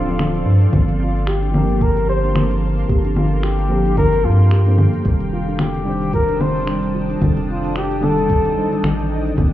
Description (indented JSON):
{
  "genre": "sunset chillout",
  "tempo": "111 BPM",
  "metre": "4/4",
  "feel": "swing 57% on 16ths",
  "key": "unclear",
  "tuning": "A4 = 440 Hz",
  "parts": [
    { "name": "breathy flugelhorn", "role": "melody", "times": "0.0-9.1 s", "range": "F4 to C5", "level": "-23 LUFS", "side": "left 2 dB", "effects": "tape echo, shimmer reverb" },
    { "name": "mellow FM electric piano", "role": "accompaniment", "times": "0.0-9.5 s", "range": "Eb3 to C5", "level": "-23 LUFS", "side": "equal", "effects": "chorus, auto-pan, cassette tape, shimmer reverb" },
    { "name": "shimmering ambient pad", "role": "sustained chords", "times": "0.0-9.5 s", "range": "Bb3 to Eb6", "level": "-32 LUFS", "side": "right 3 dB", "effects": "chorus, built-in reverb, shimmer reverb" },
    { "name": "round analog bass", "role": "bass", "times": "0.0-9.5 s", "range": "D1 to G2", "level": "-19 LUFS", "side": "equal", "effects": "none" },
    { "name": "buzzing kalimba", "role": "arpeggios", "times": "0.1-9.5 s", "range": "C4 to F5", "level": "-27 LUFS", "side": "right 2 dB", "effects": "ping-pong delay, shimmer reverb" },
    { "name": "smooth R&B drum kit", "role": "drums", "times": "0.1-9.5 s", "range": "cabasa, congas, finger snaps, hi-hat", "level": "-21 LUFS", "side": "left 2 dB", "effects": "none" },
    { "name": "electronic kick drum", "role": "drums", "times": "0.7-9.5 s", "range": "none", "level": "-18 LUFS", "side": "equal", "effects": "none" },
    { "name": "swell", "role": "sound effects", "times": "8.5-9.4 s", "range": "none", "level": "-31 LUFS", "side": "right 1 dB", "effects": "none" }
  ],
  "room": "light reverb",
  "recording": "heard muffled through a wall, club reverb, EQ",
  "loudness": "-15 LUFS",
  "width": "side -13 dB against mid",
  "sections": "0.0-9.5 A section",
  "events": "swell 8.5-9.4",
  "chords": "0.0 Dm7; 0.7 Gm11; 5.1 F13"
}